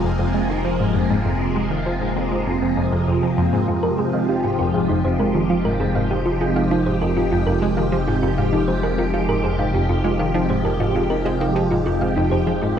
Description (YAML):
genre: ambient, sequencer-driven space music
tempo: 99 BPM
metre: 4/4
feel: straight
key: F minor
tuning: A4 = 440 Hz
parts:
  - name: phased string machine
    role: sustained chords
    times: 0.0-12.8 s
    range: C3 to G4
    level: -21 LUFS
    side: equal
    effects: ensemble chorus, phaser
  - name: analog pluck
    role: riff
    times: 0.0-12.7 s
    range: F2 to Ab3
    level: -23 LUFS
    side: equal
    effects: chorus, phaser, analog delay
  - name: warm sub bass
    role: bass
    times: 0.0-12.8 s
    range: F1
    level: -29 LUFS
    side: equal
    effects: none
  - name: wind-like tuned noise texture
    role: texture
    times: 0.0-12.8 s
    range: Eb4 to Eb5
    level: -32 LUFS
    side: right 1 dB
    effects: built-in reverb
  - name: thumb-piano-like synth pluck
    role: arpeggios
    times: 3.7-12.7 s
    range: Eb4 to F5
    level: -25 LUFS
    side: right 2 dB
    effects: chorus, auto-pan, analog delay
room: wet plate reverb, RT60 2.6 s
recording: dreamy mix soaked in reverb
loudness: -18 LUFS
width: side -8 dB against mid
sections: 0.0-12.8 A section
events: none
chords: 0.0 Fmadd9